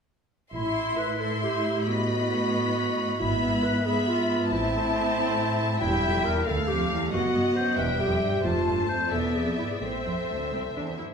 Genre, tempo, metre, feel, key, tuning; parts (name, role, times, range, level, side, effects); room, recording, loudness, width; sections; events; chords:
quick classical-period movement for symphony orchestra; 91 BPM (dotted quarters); 6/8; rubato; A minor; A4 = 439 Hz
rich studio violin section; melody; 0.5-11.0 s; E5 to C6; -32 LUFS; left 4 dB
dark chamber violin section; second line; 0.5-11.0 s; C5 to G5; -32 LUFS; equal
warm clarinet; second line; 0.5-11.0 s; E4 to C5; -29 LUFS; equal
rich chamber viola section; accompaniment; 0.5-11.1 s; G3 to E4; -30 LUFS; right 1 dB
rich chamber double bass section; bass; 0.5-0.9, 3.2-10.0 s; E1 to D2; -34 LUFS; right 2 dB
rich symphonic cello section; bass; 0.5-11.1 s; C2 to A2; -31 LUFS; right 1 dB
wet recital hall reverb, RT60 1.4 s; minimal, uncompressed stereo recording; -23 LUFS; side -6 dB against mid
0.5-11.1 A section
0.5 Am; 1.9 B7/A; 3.2 E/G#; 4.5 Am; 5.8 Edim; 6.5 Dm; 7.1 B/F#; 7.8 Em; 8.4 F; 9.1 E7; 9.8 Am